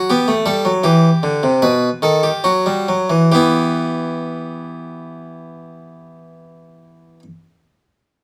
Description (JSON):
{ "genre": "classical, baroque-style two-part invention for harpsichord", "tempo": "66-83 BPM", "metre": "4/4", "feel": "straight", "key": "E minor", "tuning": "A4 = 440 Hz", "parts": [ { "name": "harpsichord", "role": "solo", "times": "0.0-7.2 s", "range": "B2 to B4", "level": "-17 LUFS", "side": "equal", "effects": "none" } ], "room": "moderate stone room reverb, RT60 0.9 s", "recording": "none", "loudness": "-16 LUFS", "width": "mono", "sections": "0.0-3.3 A section; 3.3-6.9 B section", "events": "slowing down 0.0-3.3", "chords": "0.1 Em; 1.6 B; 3.3 Em" }